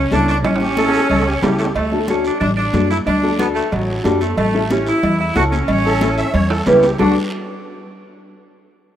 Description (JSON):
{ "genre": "latin, cumbia", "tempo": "183 BPM", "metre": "4/4", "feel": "straight", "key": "D major", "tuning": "A4 = 439 Hz", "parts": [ { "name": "mellow saxophone section", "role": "melody", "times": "0.0-7.2 s", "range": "F#3 to F#4", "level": "-20 LUFS", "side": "right 1 dB", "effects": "none" }, { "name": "upright bass", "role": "bass", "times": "0.0-7.2 s", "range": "A1 to F#2", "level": "-22 LUFS", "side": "right 1 dB", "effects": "none" }, { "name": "nylon-string guitar", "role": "accompaniment", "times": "0.1-7.1 s", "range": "C#4 to B4", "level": "-19 LUFS", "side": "left 1 dB", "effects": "none" }, { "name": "congas", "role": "percussion", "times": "0.1-7.1 s", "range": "none", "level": "-22 LUFS", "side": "left 2 dB", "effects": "none" }, { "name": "cowbell and timbales", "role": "percussion", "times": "0.1-7.1 s", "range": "none", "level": "-26 LUFS", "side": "right 5 dB", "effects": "none" }, { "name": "guiro", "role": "percussion", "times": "0.1-7.1 s", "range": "none", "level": "-35 LUFS", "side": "right 3 dB", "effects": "none" }, { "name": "musette accordion", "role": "second line", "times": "0.6-1.7, 5.8-7.2 s", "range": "F#4 to E5", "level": "-24 LUFS", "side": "right 2 dB", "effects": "none" } ], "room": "moderate lush hall reverb, RT60 3.1 s", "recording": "rough home demo mix", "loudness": "-14 LUFS", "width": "side -10 dB against mid", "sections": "0.0-1.8 A section; 1.8-7.0 B section; 7.0-8.3 C section", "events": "drum fill 0.4-1.8, 6.5-7.0", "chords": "0.0 A7; 1.8 D; 4.4 A; 7.0 D" }